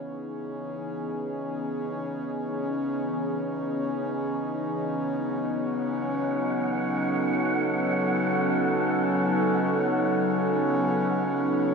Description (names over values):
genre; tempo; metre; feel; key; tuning
ambient; free time; none; none; unclear; A4 = 440 Hz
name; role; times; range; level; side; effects
warbly tape-like pad; sustained chords; 0.0-11.7 s; E3 to A4; -26 LUFS; equal; chorus, built-in reverb
hand-pumped harmonium; drone; 0.0-11.7 s; C#3 to C#4; -32 LUFS; equal; none
wind-like tuned noise texture; texture; 5.7-11.7 s; F#5; -31 LUFS; right 1 dB; built-in reverb
room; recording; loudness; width
wet huge ambient reverb, RT60 7.5 s; dark, warm production; -24 LUFS; side -5 dB against mid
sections
0.0-11.7 A section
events
fade-in on ambient pad 0.0-11.7; fade-in on harmonium 0.0-11.7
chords
0.0 C#m9; 5.0 B9